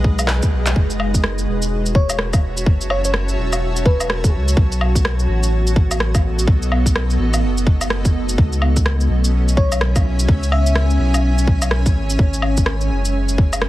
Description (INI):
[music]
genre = future garage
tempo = 126 BPM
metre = 4/4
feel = swing 62% on 16ths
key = F# dorian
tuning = A4 = 439 Hz
[part]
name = granular cloud pad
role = sustained chords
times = 0.0-13.7 s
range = G#3 to A5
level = -24 LUFS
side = right 1 dB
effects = built-in reverb, sidechain pumping
[part]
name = warm sub bass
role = bass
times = 0.0-13.7 s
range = E1 to C#2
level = -18 LUFS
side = equal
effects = sidechain pumping
[part]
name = electronic kick drum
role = drums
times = 0.0-13.5 s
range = none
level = -15 LUFS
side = equal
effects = none
[part]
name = flickering grainy texture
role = texture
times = 0.0-0.8 s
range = F#4 to F#5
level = -44 LUFS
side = equal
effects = none
[part]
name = electronic shaker, woodblock, rim click and handclaps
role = drums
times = 0.2-13.7 s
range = none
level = -23 LUFS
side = equal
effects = none
[part]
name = bell-like FM electric piano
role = melody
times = 2.0-4.3, 9.6-11.2 s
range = B4 to E5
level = -26 LUFS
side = left 1 dB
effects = chorus, tape echo
[sound]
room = light reverb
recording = heavily compressed radio sound, multiband compression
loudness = -15 LUFS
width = side -16 dB against mid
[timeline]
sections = 0.8-13.7 A section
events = drum fill 0.3-0.8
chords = 0.0 G#m; 0.8 F#m7; 4.6 B7; 8.4 C#m; 12.2 G#m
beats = 0.28 | 0.76 1.24 1.71 2.19 | 2.66 3.14 3.62 4.09 | 4.57 5.04 5.52 6.00 | 6.47 6.95 7.43 7.90 | 8.38 8.85 9.33 9.81 | 10.28 10.76 11.23 11.71 | 12.19 12.66 13.14 13.62